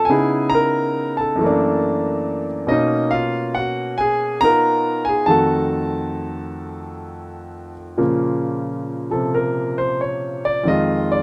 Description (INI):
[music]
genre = solo jazz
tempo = 91 BPM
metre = 4/4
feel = swing 67% on 8ths, rubato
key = unclear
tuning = A4 = 440 Hz
[part]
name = clear concert grand piano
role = solo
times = 0.0-11.2 s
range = F2 to Bb5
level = -20 LUFS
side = equal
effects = none
[sound]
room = studio ambience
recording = rough home demo mix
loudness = -20 LUFS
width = mono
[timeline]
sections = 0.0-8.0 A section; 8.0-11.2 B section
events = grand piano solo 8.0-11.2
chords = 0.1 Dbm9; 1.4 Gb7alt; 2.7 Bmaj9; 5.3 F7b9; 8.0 Bbm; 10.7 Fm7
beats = | 0.11 0.77 1.42 2.07 | 2.71 3.35 4.00 4.65 | 5.29 5.94 6.60 7.29 | 7.99 8.67 9.34 10.00 | 10.67